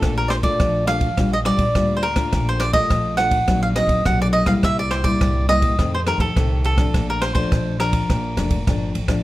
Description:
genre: samba and choro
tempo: 104 BPM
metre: 4/4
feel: straight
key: Bb major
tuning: A4 = 440 Hz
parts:
  - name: cavaquinho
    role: melody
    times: 0.0-8.9 s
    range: A4 to Gb5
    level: -21 LUFS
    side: right 1 dB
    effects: plate reverb
  - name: nylon-string guitar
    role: accompaniment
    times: 0.0-9.2 s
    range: F2 to F4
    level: -24 LUFS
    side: left 2 dB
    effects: none
  - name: upright bass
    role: bass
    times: 0.0-9.2 s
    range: F1 to F2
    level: -23 LUFS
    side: equal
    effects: none
  - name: open jazz drum kit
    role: drums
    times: 0.0-9.2 s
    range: kick drum, ride cymbal, rim click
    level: -22 LUFS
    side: equal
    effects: none
room: light reverb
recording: none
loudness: -17 LUFS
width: side -16 dB against mid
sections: 0.0-9.2 A section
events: none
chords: 0.0 Bbmaj7; 1.2 Gm7/Bb; 2.3 Bbmaj7; 3.5 Ebm6/Bb; 4.6 C7; 5.8 F7; 6.9 Bbmaj7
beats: | 0.02 0.60 1.18 1.75 | 2.33 2.91 3.48 4.06 | 4.64 5.21 5.79 6.37 | 6.95 7.52 8.10 8.68

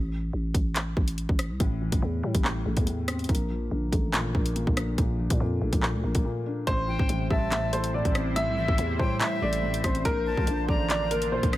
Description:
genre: hip hop, drill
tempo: 142 BPM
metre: 4/4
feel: half-time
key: A phrygian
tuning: A4 = 440 Hz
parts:
  - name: growling 808-style bass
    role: bass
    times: 0.0-11.6 s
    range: A1 to Bb2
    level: -30 LUFS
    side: equal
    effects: none
  - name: drill drum kit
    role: drums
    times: 0.5-11.6 s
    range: handclaps, hi-hat, kick drum, rim click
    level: -27 LUFS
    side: equal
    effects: none
  - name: felt-muted upright piano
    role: accompaniment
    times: 1.6-11.6 s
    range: A2 to D4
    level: -31 LUFS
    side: left 1 dB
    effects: none
  - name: warm upright piano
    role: melody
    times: 6.7-11.6 s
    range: Bb4 to E5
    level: -29 LUFS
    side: equal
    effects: ping-pong delay
  - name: sweeping resonant pad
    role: sustained chords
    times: 6.7-11.6 s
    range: C3 to C5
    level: -36 LUFS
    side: right 2 dB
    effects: chorus
  - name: breathy bright jazz flute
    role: second line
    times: 6.9-11.3 s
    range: E5 to Bb5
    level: -35 LUFS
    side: left 5 dB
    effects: ping-pong delay
room: small room ambience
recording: none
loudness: -24 LUFS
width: side -15 dB against mid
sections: 0.0-6.7 A section; 6.7-11.6 B section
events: break 0.0-1.6, 6.2-6.7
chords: 0.0 A7(no3); 3.3 Bbmaj7; 6.7 Am7; 10.1 Bbmaj7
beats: 0.33 0.76 1.18 | 1.60 2.02 2.45 2.87 | 3.29 3.71 4.14 4.56 | 4.98 5.40 5.83 6.25 | 6.67 7.09 7.52 7.94 | 8.36 8.78 9.21 9.63 | 10.05 10.47 10.90 11.32

